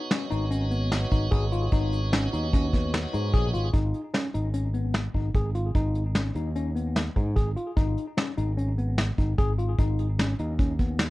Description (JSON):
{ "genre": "progressive instrumental, band music in an uneven meter", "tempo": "149 BPM", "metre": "5/4", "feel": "straight", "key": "G# dorian", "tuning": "A4 = 440 Hz", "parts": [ { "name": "tonewheel organ", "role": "accompaniment", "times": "0.0-3.7 s", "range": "B3 to C#5", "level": "-33 LUFS", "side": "right 2 dB", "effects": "overdrive, slow rotary speaker" }, { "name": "bright tine electric piano", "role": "arpeggios", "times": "0.1-11.1 s", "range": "B3 to G#4", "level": "-31 LUFS", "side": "left 2 dB", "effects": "auto-pan, ping-pong delay" }, { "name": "soft brush drum kit", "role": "drums", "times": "0.1-11.1 s", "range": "hi-hat, kick drum, snare drum", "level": "-26 LUFS", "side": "equal", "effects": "none" }, { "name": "fingered electric bass", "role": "bass", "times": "0.3-11.1 s", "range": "G#1 to G#2", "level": "-27 LUFS", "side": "equal", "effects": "none" } ], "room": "light reverb", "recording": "worn, warbling old tape, cassette tape, warbly pitch drift", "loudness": "-24 LUFS", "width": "side -18 dB against mid", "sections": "0.0-3.7 A section; 3.7-11.1 B section", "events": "none", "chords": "0.0 G#m7; 3.7 G#m", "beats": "0.11 0.52 0.92 1.32 | 1.72 2.13 2.53 2.93 3.33 | 3.74 4.14 4.54 4.95 5.35 | 5.75 6.16 6.56 6.96 7.37 | 7.77 8.18 8.58 8.98 9.39 | 9.79 10.19 10.60 11.00" }